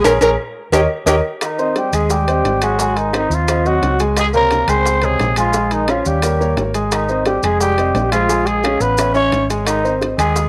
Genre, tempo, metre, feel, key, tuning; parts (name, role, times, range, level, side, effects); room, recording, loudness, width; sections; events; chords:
Afro-Cuban jazz; 174 BPM; 4/4; straight; Ab major; A4 = 439 Hz
breathy tenor saxophone; second line; 0.0-10.5 s; Eb3 to Bb4; -25 LUFS; equal
warm grand piano; accompaniment; 0.0-10.5 s; C3 to Ab5; -21 LUFS; equal
hollow-body short-scale fingered electric bass; bass; 0.0-10.5 s; F1 to Eb2; -23 LUFS; equal
cowbell and bongos; percussion; 0.0-10.5 s; -28 LUFS; equal
maracas; percussion; 0.0-10.5 s; -30 LUFS; equal
timbales; percussion; 0.0-10.4 s; -27 LUFS; equal
claves; percussion; 0.1-10.4 s; -34 LUFS; equal
growling trumpet; melody; 1.4-10.5 s; Eb4 to C#5; -21 LUFS; equal; cassette tape
light reverb, small room ambience; home recording on cassette; -16 LUFS; mono
0.0-1.4 A section; 1.4-10.5 B section
tenor saxophone solo 0.0-1.4; drum fill 0.0-1.4; band accent 0.0-1.4
0.0 Bbm7; 0.7 Eb7; 1.4 Abmaj7; 2.8 Ab6; 4.2 Db5; 5.5 Bbm7; 6.2 Eb7; 6.9 Ab; 7.6 Fm11; 8.3 Bbm7; 9.0 A; 9.7 Ab